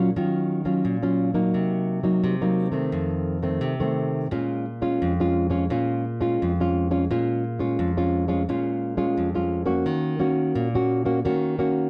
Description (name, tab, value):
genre	samba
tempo	86 BPM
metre	4/4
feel	straight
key	Bb minor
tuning	A4 = 440 Hz
part	nylon-string guitar	solo	0.0-11.9 s	F2 to Gb4	-24 LUFS	equal	slapback echo
room	light reverb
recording	dark, warm production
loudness	-24 LUFS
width	mono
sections	0.0-9.9 A section; 9.9-11.9 B section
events	none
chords	0.0 Ebm9; 1.6 Cm7b5; 2.9 F7; 4.3 Bbm7; 9.9 Ebm7